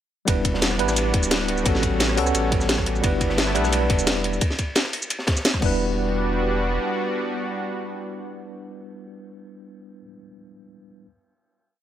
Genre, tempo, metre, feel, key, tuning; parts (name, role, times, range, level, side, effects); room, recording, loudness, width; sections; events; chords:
liquid drum and bass; 174 BPM; 4/4; straight; E dorian; A4 = 440 Hz
tine electric piano; accompaniment; 0.3-11.1 s; G3 to B4; -26 LUFS; right 1 dB; medium stereo tremolo, dub echo
lush unison pad; sustained chords; 0.3-9.3 s; G3 to F#4; -28 LUFS; equal; chorus, sidechain pumping
warm sub bass; bass; 0.3-6.8 s; D1 to C#2; -26 LUFS; equal
crunchy breakbeat drum kit; drums; 0.3-5.5 s; ride cymbal, snare drum; -30 LUFS; equal; high-pass filter on cymbals, small room ambience, high-pass filter on snare, high-pass filter on room
electronic kick drum; drums; 0.3-5.7 s; -23 LUFS; equal; small room ambience
garage drum kit; drums; 0.3-5.7 s; crash cymbal, hi-hat, rim click, shaker, snare drum; -24 LUFS; equal; small room ambience
light reverb; -20 LUFS; side -11 dB against mid
0.3-5.8 drop; 5.8-8.6 final hit
drop 0.3-5.8
0.3 Em7; 1.7 A13; 3.0 G6; 4.4 N.C.; 5.6 Em7